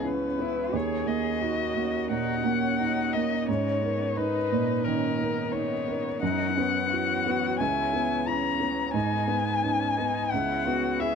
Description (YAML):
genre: neoclassical piano and strings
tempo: 88 BPM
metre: 4/4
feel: rubato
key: C# dorian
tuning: A4 = 444 Hz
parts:
  - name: muted violin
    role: melody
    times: 0.0-11.2 s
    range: A#4 to A#5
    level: -28 LUFS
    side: left 6 dB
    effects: none
  - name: muted cello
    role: second line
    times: 0.0-11.2 s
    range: B3 to G#4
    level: -34 LUFS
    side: right 3 dB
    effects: none
  - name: felt-muted upright piano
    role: accompaniment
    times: 0.0-11.2 s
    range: C#2 to A#4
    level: -28 LUFS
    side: right 3 dB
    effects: none
  - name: muted chamber string section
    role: sustained chords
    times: 0.0-11.2 s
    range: E3 to D#5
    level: -38 LUFS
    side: left 2 dB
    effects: none
room: light reverb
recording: dark, warm production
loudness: -24 LUFS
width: side -6 dB against mid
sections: 0.0-11.2 A section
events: none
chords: 0.0 C#m7; 0.7 D#m7; 3.5 G#madd9; 6.2 F#7sus4; 7.6 C#m7; 8.9 G#madd9; 10.3 C#m7